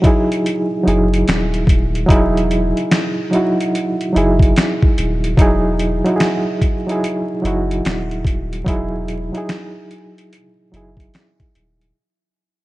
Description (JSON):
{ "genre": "lo-fi hip hop", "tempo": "73 BPM", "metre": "4/4", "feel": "swing 65% on 16ths", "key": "E major", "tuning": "A4 = 440 Hz", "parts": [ { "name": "bright reed electric piano", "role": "accompaniment", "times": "0.0-12.0 s", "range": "F#3 to G#4", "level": "-18 LUFS", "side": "right 1 dB", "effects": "fast tremolo, cassette tape, low-pass filter" }, { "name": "dusty soul sampler-style drum kit", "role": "drums", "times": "0.0-11.9 s", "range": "finger snaps, hi-hat, kick drum, snare drum", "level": "-17 LUFS", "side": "equal", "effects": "overdrive" }, { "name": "soft dub sub bass", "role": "bass", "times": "0.9-11.9 s", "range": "D#1 to F#1", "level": "-20 LUFS", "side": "equal", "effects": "none" } ], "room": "light reverb", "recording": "vinyl crackle, nothing above 10.3 kHz", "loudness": "-14 LUFS", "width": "side -18 dB against mid", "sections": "0.0-5.4 A section; 5.4-12.0 B section", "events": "fade-out 5.4-12.0", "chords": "0.0 Emaj9" }